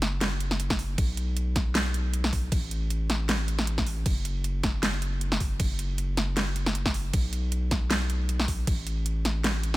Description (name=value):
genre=future bass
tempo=156 BPM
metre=4/4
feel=swing 55% on 16ths, half-time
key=unclear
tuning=A4 = 440 Hz
part: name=saturated sub bass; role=bass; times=0.0-9.8 s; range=F#1 to B1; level=-28 LUFS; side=equal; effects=sidechain pumping
part: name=dubstep drum kit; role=drums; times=0.0-9.8 s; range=crash cymbal, hi-hat, snare drum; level=-29 LUFS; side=equal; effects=none
part: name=electronic kick drum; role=drums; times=0.7-8.8 s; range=none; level=-28 LUFS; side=equal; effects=none
room=little or no reverb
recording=none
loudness=-25 LUFS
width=side -18 dB against mid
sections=0.0-9.8 A section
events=none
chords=none